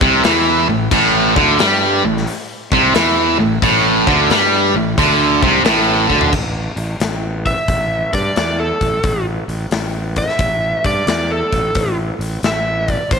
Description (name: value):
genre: blues rock power trio and southern rock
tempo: 89 BPM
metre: 4/4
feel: swing 66% on 8ths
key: A minor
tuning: A4 = 440 Hz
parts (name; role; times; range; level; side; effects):
- distorted electric guitar; riff; 0.0-6.3 s; A2 to G3; -12 LUFS; right 1 dB; overdrive
- fuzz fingered electric bass; bass; 0.0-13.2 s; A1 to G2; -21 LUFS; right 1 dB; overdrive
- big rock drum kit; drums; 0.0-13.2 s; crash cymbal, hi-hat, kick drum, snare drum, toms; -21 LUFS; left 3 dB; none
- overdriven slide guitar; melody; 7.5-13.2 s; A4 to E5; -19 LUFS; right 1 dB; slapback echo
room: light reverb, small room ambience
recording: 1960s-style stereo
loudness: -13 LUFS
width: side -5 dB against mid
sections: 0.0-6.3 A section; 6.3-13.2 B section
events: drum fill 6.0-6.3; electric slide guitar solo 6.3-13.2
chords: 0.0 Am; 6.3 A5